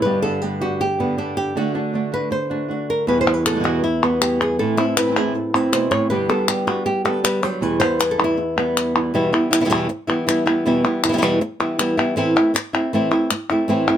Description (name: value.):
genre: flamenco.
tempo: 158 BPM.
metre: 4/4.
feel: straight.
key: E minor.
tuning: A4 = 439 Hz.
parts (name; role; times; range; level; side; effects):
flamenco guitar; melody; 0.0-14.0 s; E2 to C#5; -18 LUFS; equal; none.
flamenco guitar; stabs; 0.0-9.1 s; E2 to G4; -25 LUFS; right 2 dB; none.
palmas hand claps; percussion; 3.3-14.0 s; none; -21 LUFS; left 3 dB; none.
room: light reverb.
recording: none.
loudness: -17 LUFS.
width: side -10 dB against mid.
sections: 0.0-9.1 A section; 9.1-14.0 B section.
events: nylon-string guitar solo 0.0-9.1.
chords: 0.0 G; 1.6 D; 3.1 Emadd9; 4.6 Am; 6.1 G; 7.6 Em; 12.2 Am.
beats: | 0.05 0.43 0.80 1.18 | 1.56 1.94 2.32 2.70 | 3.08 3.46 3.83 4.21 | 4.59 4.97 5.35 5.73 | 6.11 6.49 6.87 7.24 | 7.62 8.00 8.38 8.76 | 9.14 9.52 9.90 10.28 | 10.65 11.03 11.41 11.79 | 12.17 12.55 12.93 13.31 | 13.69.